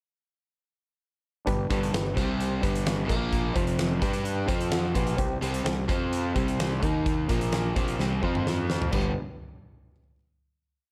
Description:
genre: classic rock.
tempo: 129 BPM.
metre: 4/4.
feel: straight.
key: unclear.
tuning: A4 = 440 Hz.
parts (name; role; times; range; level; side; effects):
reed electric piano; accompaniment; 1.5-9.2 s; Bb3 to B5; -37 LUFS; equal; spring reverb.
overdriven electric guitar; riff; 1.5-9.1 s; F2 to G4; -34 LUFS; equal; none.
raw garage guitar; riff; 1.5-9.1 s; F2 to G4; -34 LUFS; equal; overdrive.
fuzz fingered electric bass; bass; 1.5-9.2 s; F1 to G2; -34 LUFS; equal; overdrive.
huge arena drum kit; drums; 1.5-9.0 s; crash cymbal, hi-hat, kick drum, snare drum, toms; -32 LUFS; equal; none.
room: light reverb, small room ambience.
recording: none.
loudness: -27 LUFS.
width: mono.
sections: 1.5-8.9 riff; 8.9-10.8 final chord.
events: reed electric piano fill 3.8-5.2; drum fill 8.0-8.9.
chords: 1.5 G; 2.2 C5; 2.6 G; 3.1 Bb5; 3.6 F5; 4.0 G; 4.5 F5; 5.0 G; 5.2 C5; 5.9 F5; 6.4 C5; 6.8 Eb5; 7.3 Bb5; 7.8 C5; 8.2 F5; 8.9 G5.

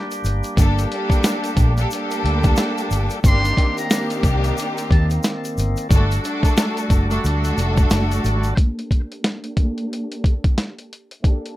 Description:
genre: hip hop, boom-bap hip-hop.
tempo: 90 BPM.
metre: 4/4.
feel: swing 60% on 16ths.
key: G harmonic minor.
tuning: A4 = 440 Hz.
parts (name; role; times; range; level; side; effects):
bright studio string section; accompaniment; 0.0-11.6 s; A3 to A4; -25 LUFS; equal; high-pass filter, low-pass filter.
bright tonewheel organ; sustained chords; 0.0-8.5 s; Eb3 to A4; -27 LUFS; equal; slow rotary speaker, high-pass filter, low-pass filter.
boom bap sampler-style drum kit; drums; 0.1-11.6 s; hi-hat, kick drum, snare drum; -18 LUFS; equal; none.
tube shaker; percussion; 0.1-8.6 s; none; -35 LUFS; left 3 dB; none.
vintage muted fingered electric bass; bass; 0.2-8.5 s; F1 to Eb2; -19 LUFS; equal; none.
trumpet with metal mute; melody; 3.3-10.4 s; A4 to C6; -26 LUFS; equal; high-pass filter, low-pass filter, ping-pong delay.
room: little or no reverb.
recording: rough home demo mix.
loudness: -17 LUFS.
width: side -16 dB against mid.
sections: 0.0-8.6 A section; 8.6-11.6 B section.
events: filter sweep 8.6-11.6.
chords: 0.0 Gmadd9; 3.2 Cm7/G; 5.9 D; 8.6 Gmadd9.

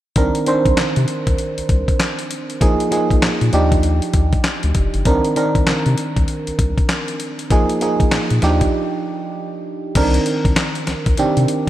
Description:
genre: R&B, new jack swing.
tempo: 98 BPM.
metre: 4/4.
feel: swing 62% on 16ths.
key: C minor.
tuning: A4 = 440 Hz.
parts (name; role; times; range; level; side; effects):
FM electric piano; accompaniment; 0.2-11.7 s; D3 to C5; -19 LUFS; right 2 dB; chorus.
round analog bass; bass; 0.2-11.5 s; F1 to C3; -18 LUFS; left 1 dB; none.
dusty soul sampler-style drum kit; drums; 0.2-11.7 s; crash cymbal, handclaps, hi-hat, kick drum, snare drum; -19 LUFS; left 1 dB; gated reverb.
room: moderate plate reverb, RT60 3.8 s.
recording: bright 1980s-style digital production.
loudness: -15 LUFS.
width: side -13 dB against mid.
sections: 0.2-10.0 A section; 10.0-11.7 B section.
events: break 8.7-10.0.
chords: 0.2 Cm9; 2.6 Bb7sus4; 3.5 Ebmaj9; 5.1 Cm9; 7.5 Bb7sus4; 8.4 Ebmaj9; 10.0 Cm9.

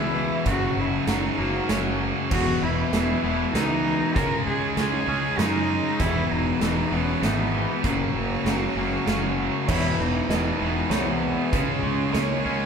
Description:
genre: post-rock.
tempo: 98 BPM.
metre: 3/4.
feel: straight.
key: E lydian.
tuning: A4 = 440 Hz.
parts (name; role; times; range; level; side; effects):
warm cello; melody; 0.0-12.7 s; A#3 to A#4; -29 LUFS; right 2 dB; none.
lush unison pad; sustained chords; 0.0-12.7 s; E3 to D#6; -38 LUFS; right 2 dB; none.
twangy electric guitar; arpeggios; 0.0-12.7 s; E2 to D#4; -34 LUFS; left 3 dB; none.
crunchy overdriven guitar; riff; 0.0-12.7 s; E2 to C#4; -28 LUFS; left 6 dB; none.
tight distorted guitar; riff; 0.0-12.7 s; E2 to C#4; -28 LUFS; right 7 dB; distortion.
fuzz fingered electric bass; bass; 0.0-12.7 s; E1 to F#2; -29 LUFS; equal; overdrive.
big rock drum kit; drums; 0.5-12.3 s; crash cymbal, hi-hat, kick drum, snare drum; -29 LUFS; right 1 dB; none.
felt-muted upright piano; arpeggios; 9.7-12.7 s; B4 to D#5; -35 LUFS; right 2 dB; none.
room: wet large studio reverb, RT60 1.3 s.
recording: band playing live in one room.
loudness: -21 LUFS.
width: side -6 dB against mid.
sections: 0.0-12.7 A section.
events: none.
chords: 0.5 F#; 2.3 Emaj7; 4.2 C#sus2; 6.0 Emaj7; 7.8 F#; 9.7 Emaj7; 11.5 C#sus2.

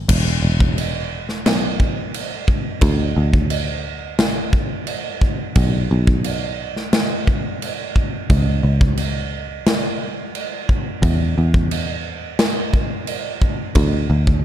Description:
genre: rock, shoegaze and dream pop.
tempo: 88 BPM.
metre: 4/4.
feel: straight.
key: E major.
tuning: A4 = 440 Hz.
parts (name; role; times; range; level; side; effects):
picked electric bass; bass; 0.0-14.4 s; E1 to F#2; -19 LUFS; equal; none.
big rock drum kit; drums; 0.1-14.4 s; crash cymbal, kick drum, snare drum; -19 LUFS; equal; none.
room: little or no reverb.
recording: dark, warm production.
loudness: -17 LUFS.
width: side -11 dB against mid.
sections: 0.1-14.4 A section.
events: none.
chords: none.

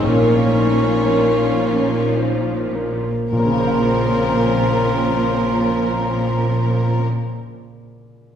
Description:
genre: cinematic, emotional film score for orchestra.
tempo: 51-60 BPM.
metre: 3/4.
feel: rubato.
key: Bb minor.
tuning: A4 = 440 Hz.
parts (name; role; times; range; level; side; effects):
clear symphonic violin section; melody; 0.0-7.0 s; Bb4 to Db5; -28 LUFS; left 3 dB; none.
mellow cor anglais; second line; 0.0-7.0 s; Db4 to F4; -28 LUFS; right 1 dB; none.
mellow hollow large flute ensemble; second line; 0.0-7.0 s; Bb4 to Bb5; -24 LUFS; equal; none.
rich symphonic violin section; second line; 0.0-7.0 s; Bb3 to F4; -28 LUFS; left 1 dB; none.
clear concert grand piano; accompaniment; 0.0-8.4 s; Bb2 to F5; -24 LUFS; equal; none.
warm symphonic viola section; accompaniment; 0.0-7.0 s; F3 to Db4; -24 LUFS; right 2 dB; none.
mellow French horn section; sustained chords; 0.0-7.0 s; F3 to C5; -25 LUFS; left 7 dB; none.
clear symphonic double bass section; bass; 0.0-7.0 s; Bb1; -24 LUFS; right 1 dB; none.
warm symphonic cello section; bass; 0.0-7.0 s; Bb2; -24 LUFS; right 2 dB; none.
timpani; percussion; 3.3-7.0 s; Bb2; -32 LUFS; left 2 dB; none.
room: wet scoring stage reverb, RT60 1.6 s.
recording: heard from further back in the room.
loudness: -15 LUFS.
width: side -8 dB against mid.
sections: 0.0-3.3 A section; 3.3-6.7 B section.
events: slowing down 0.0-3.3.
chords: 0.0 Bbmadd9.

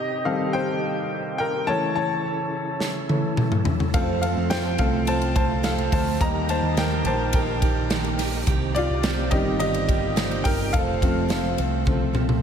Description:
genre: piano-driven pop.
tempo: 106 BPM.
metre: 4/4.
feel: straight.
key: F mixolydian.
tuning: A4 = 440 Hz.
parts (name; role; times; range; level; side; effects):
clear upright piano; accompaniment; 0.0-12.4 s; Eb3 to Bb5; -25 LUFS; left 2 dB; slapback echo.
bright tonewheel organ; sustained chords; 0.0-12.4 s; C3 to Bb4; -34 LUFS; right 3 dB; chorus vibrato, fast rotary speaker.
modern studio drum kit; drums; 2.8-12.4 s; hi-hat, kick drum, ride cymbal, snare drum, toms; -24 LUFS; equal; none.
picked steel-string acoustic guitar; riff; 3.9-12.4 s; F2 to A4; -29 LUFS; right 12 dB; slapback echo.
overdriven picked electric bass; bass; 3.9-12.4 s; F1 to F2; -27 LUFS; equal; none.
room: moderate lush hall reverb, RT60 2.5 s.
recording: big arena sound.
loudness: -21 LUFS.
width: side -8 dB against mid.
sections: 0.0-12.4 A section.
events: upright piano solo 0.0-12.4; drum fill 2.8-3.9, 11.9-12.4.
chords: 0.0 Cm; 1.7 A/C#; 3.9 F; 6.2 Eb; 8.5 Cm; 10.7 F.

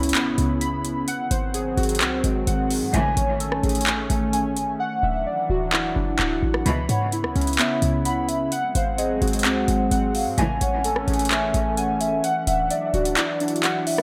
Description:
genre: hip hop, trap.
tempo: 129 BPM.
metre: 4/4.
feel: half-time.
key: C# phrygian.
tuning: A4 = 440 Hz.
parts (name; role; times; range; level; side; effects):
warbly tape-like pad; sustained chords; 0.0-14.0 s; C#3 to E4; -31 LUFS; equal; chorus, built-in reverb.
warbly lo-fi synth keys; arpeggios; 0.0-14.0 s; C#3 to B5; -27 LUFS; equal; chorus, phaser, delay.
short 808-style bass; bass; 0.0-13.2 s; D1 to G#2; -28 LUFS; equal; none.
trap drum kit; drums; 0.0-14.0 s; handclaps, hi-hat, rim click; -27 LUFS; equal; overdrive.
impact; sound effects; 0.3-1.1 s; none; barely audible; none; none.
clear symphonic string section; stabs; 2.9-3.1, 6.7-6.9, 10.4-10.6 s; C#2 to E3; -30 LUFS; equal; delay.
hollow clarinet-like synth lead; second line; 6.9-14.0 s; D5 to F#5; -30 LUFS; equal; chorus, delay.
room: light reverb, digital ambience.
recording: none.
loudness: -22 LUFS.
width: mono.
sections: 0.0-14.0 A section.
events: impact 0.0-1.1; hi-hats muted 4.8-6.7; kick muted 13.2-14.0.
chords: 0.0 C#m7; 1.1 G#7; 2.9 Amaj7; 4.8 Dadd9; 6.7 C#m7; 8.5 G#7; 10.4 Amaj7; 12.2 Dadd9.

